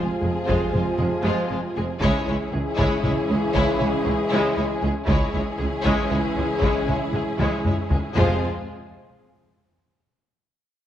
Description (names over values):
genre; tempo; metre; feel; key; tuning
cinematic, epic orchestral film score; 78 BPM (dotted quarters); 12/8; straight; unclear; A4 = 440 Hz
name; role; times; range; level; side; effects
warm symphonic violin section; melody; 0.0-8.4 s; Ab4 to Db5; -31 LUFS; left 3 dB; none
warm symphonic violin section; second line; 0.0-8.4 s; C4 to F4; -32 LUFS; left 3 dB; none
rich studio viola section; accompaniment; 0.0-8.4 s; Ab3; -29 LUFS; right 1 dB; none
warm French horn section; sustained chords; 0.0-8.4 s; Ab3 to Ab4; -30 LUFS; left 4 dB; none
warm symphonic string section; sustained chords; 0.0-8.5 s; C4 to Ab5; -30 LUFS; left 1 dB; none
warm trombone section; sustained chords; 0.0-8.4 s; C3 to F3; -31 LUFS; right 3 dB; none
rich studio double bass section; bass; 0.0-8.4 s; F1 to Db2; -28 LUFS; right 2 dB; none
rich symphonic cello section; bass; 0.0-8.5 s; Db2 to F2; -28 LUFS; right 1 dB; none
taiko ensemble; drums; 0.5-8.3 s; none; -27 LUFS; equal; none
room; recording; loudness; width
moderate scoring stage reverb, RT60 1.5 s; worn, warbling old tape, cassette tape, warbly pitch drift; -20 LUFS; side -11 dB against mid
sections
0.0-8.2 A section; 8.2-10.9 B section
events
drum fill 7.4-8.2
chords
0.0 Fm; 2.0 Dbm; 8.2 Fm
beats
0.48 1.25 | 2.02 2.79 3.55 4.32 | 5.09 5.86 6.63 7.39 | 8.16